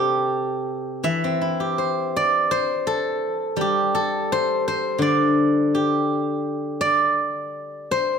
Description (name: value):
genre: chinese traditional, Chinese solo plucked strings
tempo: 83 BPM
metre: 4/4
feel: rubato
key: G zhi mode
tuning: A4 = 440 Hz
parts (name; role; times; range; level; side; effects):
- steel-string zither; solo; 0.0-8.2 s; C3 to C6; -20 LUFS; equal; none
room: moderate recital hall reverb, RT60 1.3 s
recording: none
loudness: -20 LUFS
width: side -6 dB against mid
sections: 0.0-8.2 A section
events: none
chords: none